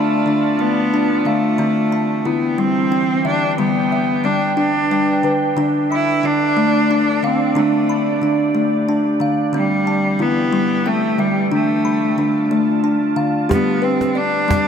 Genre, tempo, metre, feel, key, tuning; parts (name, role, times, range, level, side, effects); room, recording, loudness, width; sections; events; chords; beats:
world meditative, meditative tuned percussion; 60 BPM (dotted quarters); 6/8; straight; D dorian; A4 = 442 Hz
bright cello; melody; 0.0-14.7 s; G3 to E4; -19 LUFS; left 1 dB; dub echo
evolving wavetable pad; sustained chords; 0.0-14.7 s; D3 to A5; -23 LUFS; right 3 dB; chorus, built-in reverb
kalimba; arpeggios; 0.0-14.7 s; D3 to B5; -18 LUFS; left 1 dB
cajon; percussion; 13.5-14.7 s; -21 LUFS; right 2 dB
wet plate reverb, RT60 3.7 s; echo-heavy mix; -15 LUFS; side -7 dB against mid
0.0-13.5 A section; 13.5-14.7 B section
0.0 Dm; 1.6 C/D; 3.6 G/D; 5.6 Dm; 9.5 C/D; 11.5 Dm; 13.5 G
0.60 | 1.59 2.59 | 3.58 4.58 | 5.57 6.57 | 7.56 8.55 | 9.54 10.53 | 11.52 12.51 | 13.50 14.49